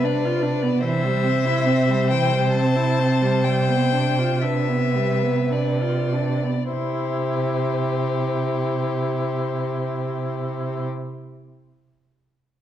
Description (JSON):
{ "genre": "classical, slow romantic movement for string quartet", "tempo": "46-76 BPM", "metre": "3/4", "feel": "rubato", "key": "C major", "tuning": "A4 = 440 Hz", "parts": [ { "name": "rich violin", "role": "melody", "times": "0.0-10.8 s", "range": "C5 to A5", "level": "-27 LUFS", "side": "left 8 dB", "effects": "none" }, { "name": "rich violin", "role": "second line", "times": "0.0-10.9 s", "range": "G4 to C5", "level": "-27 LUFS", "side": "left 2 dB", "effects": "none" }, { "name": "rich viola", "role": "accompaniment", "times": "0.0-10.8 s", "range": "E3 to F4", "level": "-25 LUFS", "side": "right 2 dB", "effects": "none" }, { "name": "rich cello", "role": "bass", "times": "0.0-10.8 s", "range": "C3", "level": "-24 LUFS", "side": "right 3 dB", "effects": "none" } ], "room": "wet recital hall reverb, RT60 1.4 s", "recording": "dark, warm production", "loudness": "-19 LUFS", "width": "side -11 dB against mid", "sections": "0.0-6.7 A section; 6.7-10.1 B section", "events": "slowing down 0.0-6.7", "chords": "0.0 G7/C (rootless); 0.8 C; 3.4 G7/C; 6.7 C", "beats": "0.04 | 0.84 1.67 2.54 | 3.45 4.42 5.51 | 6.73 7.85 8.96" }